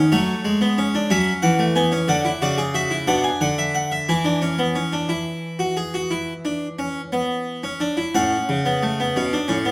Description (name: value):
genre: classical, baroque-style 3-part fugue for harpsichord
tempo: 60 BPM (dotted quarters)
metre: 12/8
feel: straight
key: A major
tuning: A4 = 441 Hz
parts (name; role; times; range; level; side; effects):
- harpsichord; solo; 0.0-9.7 s; A2 to G#5; -21 LUFS; equal; none
room: moderate stone room reverb, RT60 1.4 s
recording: close, detailed microphones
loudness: -22 LUFS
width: mono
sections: 0.0-8.1 A section; 8.1-9.7 B section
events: none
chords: 0.1 F#m; 2.1 Bm (rootless); 4.1 E; 8.1 A